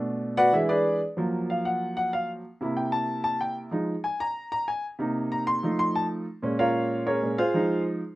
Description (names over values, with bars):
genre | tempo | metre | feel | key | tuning
jazz | 188 BPM | 4/4 | straight | unclear | A4 = 440 Hz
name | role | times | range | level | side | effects
warm grand piano | solo | 0.0-8.0 s | Bb2 to C6 | -24 LUFS | equal | none
room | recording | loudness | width
light reverb | rough home demo mix | -24 LUFS | side -17 dB against mid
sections
0.0-8.2 A section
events
grand piano solo 0.0-8.2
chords
0.0 Bm7; 0.5 E7; 1.2 Gbmaj7; 2.4 C7; 3.7 Fm7; 5.0 Cm7; 5.6 F7; 6.3 Bbm7; 7.5 Fm7